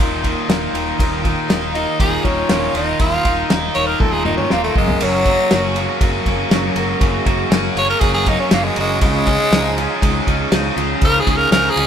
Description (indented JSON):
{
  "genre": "classic rock",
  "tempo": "120 BPM",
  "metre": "4/4",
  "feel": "straight",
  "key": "Eb minor",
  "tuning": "A4 = 440 Hz",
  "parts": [
    { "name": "picked acoustic archtop guitar", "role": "accompaniment", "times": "0.0-11.9 s", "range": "Db3 to Ab4", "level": "-28 LUFS", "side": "equal", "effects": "none" },
    { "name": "biting overdriven guitar", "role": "riff", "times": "0.0-11.9 s", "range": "Eb2 to Ab4", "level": "-23 LUFS", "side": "right 6 dB", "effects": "none" },
    { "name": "tight distorted guitar", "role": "riff", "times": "0.0-11.9 s", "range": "Eb2 to Ab4", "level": "-22 LUFS", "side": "left 5 dB", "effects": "distortion" },
    { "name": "overdriven fingered electric bass", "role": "bass", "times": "0.0-11.9 s", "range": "Eb1 to Db2", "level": "-24 LUFS", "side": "equal", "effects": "none" },
    { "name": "cloth-damped thuddy drum kit", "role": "drums", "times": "0.2-11.9 s", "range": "crash cymbal, kick drum, ride cymbal, snare drum, toms", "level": "-19 LUFS", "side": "equal", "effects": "none" },
    { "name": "raspy tenor saxophone", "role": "melody", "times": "1.7-11.9 s", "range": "Gb3 to Db5", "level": "-18 LUFS", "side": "equal", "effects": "none" },
    { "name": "string machine, cellos", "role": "sustained chords", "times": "5.0-11.9 s", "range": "Eb4 to Db5", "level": "-32 LUFS", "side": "equal", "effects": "none" }
  ],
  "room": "moderate studio reverb, RT60 0.5 s",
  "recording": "band playing live in one room",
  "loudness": "-14 LUFS",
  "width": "side -8 dB against mid",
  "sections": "0.0-11.9 A section",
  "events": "tenor saxophone solo 0.0-11.9; drum fill 4.0-5.0",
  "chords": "0.0 Ebsus2; 4.8 Gbadd9; 9.0 Dbadd9"
}